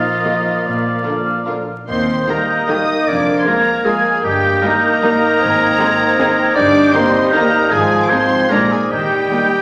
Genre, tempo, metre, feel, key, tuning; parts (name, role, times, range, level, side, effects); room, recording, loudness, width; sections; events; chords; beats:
classical; 138-167 BPM; 3/4; rubato; Eb major; A4 = 440 Hz
warm studio violin section; melody; 0.0-9.6 s; F5 to Eb6; -26 LUFS; equal
bright clarinet; second line; 0.0-9.6 s; F4 to Eb5; -21 LUFS; equal
mellow cor anglais; second line; 0.0-9.6 s; D5 to F5; -25 LUFS; equal
mellow hollow large flute ensemble; second line; 0.0-9.6 s; F6 to Ab6; -22 LUFS; equal
warm bassoon; accompaniment; 0.0-9.6 s; F3 to C4; -26 LUFS; equal
mellow French horn section; sustained chords; 0.0-9.6 s; F3 to Eb4; -25 LUFS; equal
concert harp; arpeggios; 0.0-9.6 s; F2 to Eb5; -30 LUFS; equal
warm studio violin section; second line; 0.2-9.4 s; D4 to Bb4; -31 LUFS; equal
warm studio viola section; accompaniment; 0.2-9.4 s; D3 to C4; -27 LUFS; equal
warm trombone section; sustained chords; 0.3-9.5 s; D3 to Eb4; -29 LUFS; equal
warm studio double bass section; bass; 0.6-9.2 s; F1 to Eb2; -35 LUFS; equal
warm studio cello section; bass; 0.7-9.2 s; Eb2 to Eb3; -28 LUFS; equal
wet recital hall reverb, RT60 1.4 s; vinyl crackle; -15 LUFS; mono
0.0-9.6 A section
0.0 Bbsus4; 0.6 Bb; 1.9 Eb; 3.1 Bb7/F; 4.2 Eb/G; 5.4 Ab; 6.6 Eb/G; 7.7 Fm7/Ab; 8.5 Bb7; 8.9 Eb
0.25 | 0.65 1.05 1.47 | 1.88 2.29 2.70 | 3.08 3.46 3.86 | 4.24 4.63 5.03 | 5.41 5.79 6.20 | 6.57 6.94 7.33 | 7.71 8.10 8.50 | 8.91 9.31